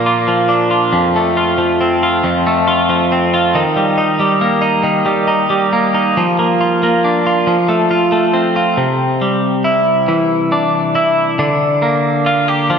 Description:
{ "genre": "pop", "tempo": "46 BPM (dotted quarters)", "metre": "6/8", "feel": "straight", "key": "Bb major", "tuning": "A4 = 440 Hz", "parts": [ { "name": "twelve-string electric guitar", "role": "solo", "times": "0.0-12.8 s", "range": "F2 to G4", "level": "-12 LUFS", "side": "equal", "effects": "none" } ], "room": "wet lush hall reverb, RT60 2.7 s", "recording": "dreamy mix soaked in reverb", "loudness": "-12 LUFS", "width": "side -6 dB against mid", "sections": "0.0-8.8 A section; 8.8-12.8 B section", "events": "none", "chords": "0.0 Bb; 0.9 F; 3.5 Eb; 6.2 Bb/F; 7.5 F; 8.8 Cadd9; 11.4 Bb6/D", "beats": "| 0.93 2.24 | 3.54 4.85 | 6.16 7.46 | 8.77 10.08 | 11.39 12.70" }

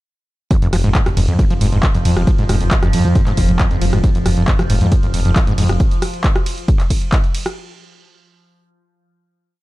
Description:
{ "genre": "driving peak-time techno", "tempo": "136 BPM", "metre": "4/4", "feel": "straight", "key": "F minor", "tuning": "A4 = 440 Hz", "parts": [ { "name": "overdriven acid bass", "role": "riff", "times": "0.5-5.7 s", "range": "F2 to F3", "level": "-19 LUFS", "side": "equal", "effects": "distortion, sidechain pumping, digital delay" }, { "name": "overtone-sweeping drone", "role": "drone", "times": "1.3-5.8 s", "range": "F3", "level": "-26 LUFS", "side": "right 2 dB", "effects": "chorus, built-in reverb, phaser, sidechain pumping" }, { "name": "electronic kick drum", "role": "drums", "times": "0.5-7.2 s", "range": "none", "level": "-15 LUFS", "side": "equal", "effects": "none" }, { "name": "punchy analog drum machine", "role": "drums", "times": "0.5-7.5 s", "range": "handclaps, hi-hat, ride cymbal, rim click", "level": "-24 LUFS", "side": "equal", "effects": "sidechain pumping on hats, sidechain pumping on cymbals" }, { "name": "growling FM bass", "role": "bass", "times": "0.6-5.8 s", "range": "F1 to F2", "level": "-17 LUFS", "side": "equal", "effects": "tube saturation, sidechain pumping" } ], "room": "light reverb, digital ambience", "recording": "dark, warm production", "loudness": "-13 LUFS", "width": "side -18 dB against mid", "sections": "0.5-7.6 drop", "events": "drop 0.5-7.6", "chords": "none", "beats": "| 0.51 0.95 1.39 1.83 | 2.27 2.71 3.15 3.60 | 4.04 4.48 4.92 5.36 | 5.80 6.24 6.68 7.12" }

